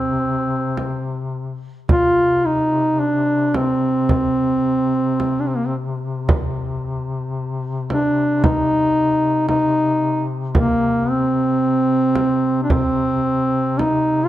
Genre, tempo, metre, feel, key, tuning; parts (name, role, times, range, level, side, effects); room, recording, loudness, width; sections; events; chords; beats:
caucasian folk, Caucasian lament; 55 BPM; 4/4; rubato; C minor; A4 = 440 Hz
mellow duduk; melody; 0.0-14.3 s; Bb3 to F4; -17 LUFS; right 1 dB
mellow duduk; drone; 0.0-14.3 s; C3; -24 LUFS; left 3 dB
frame drum; percussion; 0.8-14.0 s; -21 LUFS; right 1 dB
light reverb; dark, warm production; -16 LUFS; side -13 dB against mid
0.0-14.3 A section
0.78 | 1.89 3.00 4.10 5.20 | 6.29 7.36 8.42 9.48 | 10.55 11.62 12.70 13.79